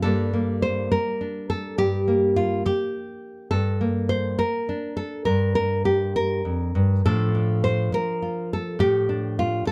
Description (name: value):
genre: folk, solo fingerstyle acoustic guitar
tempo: 68 BPM (dotted quarters)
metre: 6/8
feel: straight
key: G minor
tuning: A4 = 439 Hz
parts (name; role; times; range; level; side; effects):
- nylon-string guitar; solo; 0.0-9.7 s; F2 to C5; -24 LUFS; equal; none
room: light reverb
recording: dark, warm production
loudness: -23 LUFS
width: mono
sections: 0.0-9.7 A section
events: none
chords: 0.0 Gmadd9; 7.0 Dm/A